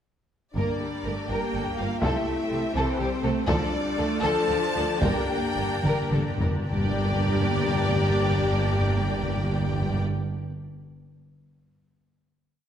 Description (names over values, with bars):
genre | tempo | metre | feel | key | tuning
cinematic, epic orchestral film score | 69-83 BPM (dotted quarters) | 6/8 | straight | G dorian | A4 = 440 Hz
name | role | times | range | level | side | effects
warm studio violin section | second line | 0.5-10.0 s | C5 to A5 | -34 LUFS | left 2 dB | none
mellow French horn section | sustained chords | 0.5-10.0 s | C4 to A4 | -31 LUFS | left 5 dB | none
rich symphonic double bass section | bass | 0.5-10.0 s | G1 to D2 | -32 LUFS | right 3 dB | none
warm symphonic violin section | melody | 0.6-10.0 s | G4 to D5 | -32 LUFS | left 1 dB | none
clear symphonic viola section | accompaniment | 0.6-10.0 s | E3 to G4 | -32 LUFS | right 2 dB | none
rich symphonic string section | sustained chords | 0.6-10.0 s | C4 to G5 | -34 LUFS | equal | none
warm studio cello section | bass | 0.6-10.0 s | G2 to D3 | -32 LUFS | right 2 dB | none
taiko ensemble | drums | 0.6-6.7 s | none | -28 LUFS | equal | none
timpani | percussion | 0.6-1.3, 3.5-10.0 s | G2 to D3 | -30 LUFS | left 2 dB | none
room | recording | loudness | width
moderate scoring stage reverb, RT60 1.6 s | none | -23 LUFS | side -9 dB against mid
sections
0.6-6.7 theme; 6.7-10.1 final chord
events
slowing down 2.8-6.7; timpani fill 5.0-6.7; drum fill 5.8-6.7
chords
0.6 Gm; 2.0 C6; 3.5 Dm; 5.0 Gm